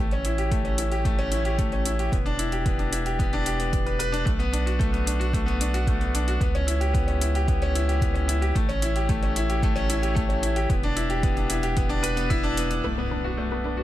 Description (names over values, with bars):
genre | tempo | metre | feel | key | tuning
piano and strings electronica | 112 BPM | 4/4 | straight | B minor | A4 = 441 Hz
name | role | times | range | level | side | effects
bright grand piano | riff | 0.0-13.8 s | A3 to B4 | -26 LUFS | left 2 dB | ping-pong delay
round analog bass | bass | 0.0-13.8 s | E1 to C#2 | -27 LUFS | right 1 dB | sidechain pumping
electronic hi-hat | drums | 0.1-12.8 s | none | -34 LUFS | equal | low-pass filter on hats, small room ambience
electronic kick drum | drums | 0.5-12.4 s | none | -26 LUFS | right 1 dB | small room ambience
analog pluck | arpeggios | 12.8-13.8 s | B4 to F#5 | -35 LUFS | left 3 dB | chorus, sidechain pumping, ping-pong delay
impact | sound effects | 12.8-13.8 s | none | -34 LUFS | equal | none
room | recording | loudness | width
little or no reverb | none | -22 LUFS | side -14 dB against mid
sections
0.0-12.8 A section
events
impact 12.8-13.8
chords
0.0 A7; 2.1 Em7; 4.3 Bm7; 6.4 C#m7b5; 8.6 A7; 10.7 Em7; 12.8 Bm7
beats
0.52 1.05 1.59 | 2.12 2.66 3.20 3.73 | 4.27 4.80 5.34 5.88 | 6.41 6.95 7.48 8.02 | 8.55 9.09 9.62 10.16 | 10.70 11.23 11.77 12.30 | 12.84 13.38